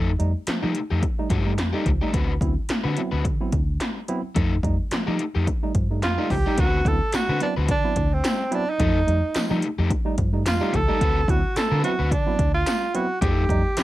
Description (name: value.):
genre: funk.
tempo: 108 BPM.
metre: 4/4.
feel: swing 56% on 16ths.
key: unclear.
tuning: A4 = 440 Hz.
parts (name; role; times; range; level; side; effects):
crunchy overdriven guitar; accompaniment; 0.0-13.4 s; A3 to B4; -29 LUFS; left 6 dB; none.
barky tine electric piano; stabs; 0.0-13.8 s; D3 to E4; -29 LUFS; right 3 dB; phaser.
vintage muted fingered electric bass; bass; 0.0-13.8 s; C#2 to F3; -24 LUFS; equal; none.
80s electronic pad drums; drums; 0.2-13.8 s; handclaps, hi-hat, kick drum, snare drum; -25 LUFS; equal; overdrive.
breathy tenor saxophone; melody; 6.0-13.8 s; C4 to A4; -24 LUFS; right 2 dB; none.
tambourine; percussion; 7.1-13.8 s; none; -39 LUFS; left 3 dB; none.
room: light reverb.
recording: dark, warm production.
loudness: -20 LUFS.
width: side -16 dB against mid.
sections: 0.0-6.6 A section; 6.6-13.8 B section.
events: none.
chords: 0.0 F9; 2.1 D13; 4.4 F9; 6.6 D13; 8.8 F9; 11.0 D13; 13.2 F9.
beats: 0.47 1.03 1.59 | 2.14 2.70 3.25 3.81 | 4.37 4.92 5.47 6.03 | 6.58 7.14 7.69 8.24 | 8.80 9.35 9.90 10.46 | 11.01 11.56 12.12 12.67 | 13.22 13.77.